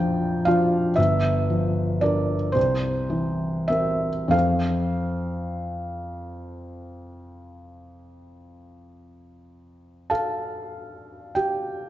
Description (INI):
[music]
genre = classical, romantic nocturne for solo piano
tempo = 30-41 BPM (dotted quarters)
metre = 12/8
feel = rubato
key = F major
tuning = A4 = 439 Hz
[part]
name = felt-muted upright piano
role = solo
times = 0.0-11.9 s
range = G1 to Bb5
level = -22 LUFS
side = equal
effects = none
[sound]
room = wet recital hall reverb, RT60 1.8 s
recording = nothing above 7.7 kHz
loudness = -21 LUFS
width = side -13 dB against mid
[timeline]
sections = 0.0-11.9 A section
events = none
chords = 0.0 Bb; 1.0 Gm7; 2.6 C7; 4.3 F